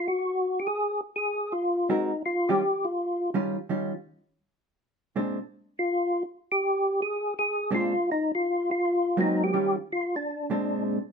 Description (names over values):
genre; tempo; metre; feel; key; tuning
jazz; 165 BPM; 4/4; swing 66% on 8ths; unclear; A4 = 440 Hz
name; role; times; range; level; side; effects
percussive tonewheel organ; melody; 0.0-3.3, 5.8-10.8 s; D4 to Ab4; -25 LUFS; left 1 dB; slow rotary speaker, chorus vibrato
vintage hollow-body jazz guitar; accompaniment; 1.9-5.4, 7.7-11.0 s; Ab2 to Bb4; -27 LUFS; right 2 dB; none
room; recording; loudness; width
moderate studio reverb, RT60 0.7 s; minimal, uncompressed stereo recording; -25 LUFS; side -6 dB against mid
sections
0.0-11.0 A section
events
none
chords
0.0 Ab9; 2.2 Eb9; 5.2 Bb9; 8.1 Ab9; 9.5 Eb9; 10.3 Bb9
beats
0.07 0.43 | 0.79 1.16 1.52 1.89 | 2.25 2.61 2.98 3.34 | 3.70 4.07 4.43 4.79 | 5.16 5.52 5.89 6.25 | 6.61 6.98 7.34 7.71 | 8.07 8.44 8.80 9.16 | 9.53 9.89 10.26 10.62